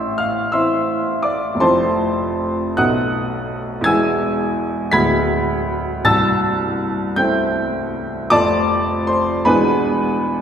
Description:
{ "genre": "classical, romantic character piece for solo piano", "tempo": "54 BPM (dotted quarters)", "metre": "6/8", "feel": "uneven beats, rubato", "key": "A minor", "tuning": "A4 = 440 Hz", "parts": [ { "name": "clear upright piano", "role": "solo", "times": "0.0-10.4 s", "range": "C1 to B6", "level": "-16 LUFS", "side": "equal", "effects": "none" } ], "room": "wet concert hall reverb, RT60 1.8 s", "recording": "heard from further back in the room", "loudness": "-16 LUFS", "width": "side -8 dB against mid", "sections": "0.0-10.4 A section", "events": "none", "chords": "0.0 Am; 1.6 Fmaj7; 2.8 B7; 3.9 E; 4.9 E7/D; 6.0 Am/C; 8.3 F; 9.5 E7" }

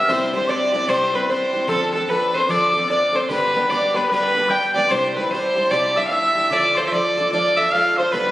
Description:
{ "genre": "celtic folk", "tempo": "149 BPM", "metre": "4/4", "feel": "swing 63% on 8ths", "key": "D dorian", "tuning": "A4 = 440 Hz", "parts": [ { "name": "rich fiddle", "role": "melody", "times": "0.0-8.3 s", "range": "A4 to G5", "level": "-19 LUFS", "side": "equal", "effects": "none" }, { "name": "breathy mellow mid whistle", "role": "second line", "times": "0.0-8.2 s", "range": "A5 to G6", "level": "-24 LUFS", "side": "left 2 dB", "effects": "none" }, { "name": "open-back banjo", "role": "second line", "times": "0.0-8.3 s", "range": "A4 to G5", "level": "-29 LUFS", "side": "right 2 dB", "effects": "none" }, { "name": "picked plugged-in acoustic archtop guitar", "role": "accompaniment", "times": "0.0-8.3 s", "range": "G2 to B4", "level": "-26 LUFS", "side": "equal", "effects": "none" }, { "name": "accordion", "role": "drone", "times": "0.0-8.3 s", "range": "D3 to D4", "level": "-32 LUFS", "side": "equal", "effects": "none" } ], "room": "wet recital hall reverb, RT60 1.5 s", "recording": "recorded on a phone in the room, studio reverb", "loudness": "-16 LUFS", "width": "side -15 dB against mid", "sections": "0.0-8.3 A section", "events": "none", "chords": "0.1 C; 1.7 Dm7; 3.3 G; 4.9 Cadd9; 6.5 Dm" }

